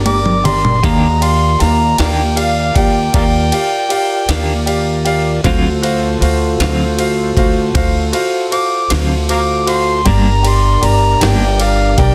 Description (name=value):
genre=slow blues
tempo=52 BPM (dotted quarters)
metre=12/8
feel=straight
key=G minor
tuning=A4 = 440 Hz
part: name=tonewheel organ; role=sustained chords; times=0.0-12.1 s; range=D4 to Eb5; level=-24 LUFS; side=equal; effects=slow rotary speaker
part: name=upright bass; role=bass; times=0.0-12.1 s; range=G1 to Eb2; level=-18 LUFS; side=equal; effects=none
part: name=overdriven harmonica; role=second line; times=0.1-12.1 s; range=Bb4 to D6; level=-19 LUFS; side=equal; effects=none
part: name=clear baby grand piano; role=accompaniment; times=0.1-12.1 s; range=F#4 to F5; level=-22 LUFS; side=equal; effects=none
part: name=jungle sampler-style drum kit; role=drums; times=0.1-12.1 s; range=kick drum, ride cymbal, snare drum, toms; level=-21 LUFS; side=equal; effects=none
part: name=clean electric guitar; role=accompaniment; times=0.8-11.5 s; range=G2 to G4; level=-22 LUFS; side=equal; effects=tremolo
room=light reverb, digital ambience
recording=dense, heavily limited modern master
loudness=-14 LUFS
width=mono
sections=0.0-12.1 A section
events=drum fill 0.0-0.8; harmonica solo 0.0-12.1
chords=0.0 Gm; 0.8 Ebmaj7; 5.5 D7#9; 10.1 Gm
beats=| 0.83 1.99 3.14 4.30 | 5.45 6.60 7.76 8.91 | 10.06 11.21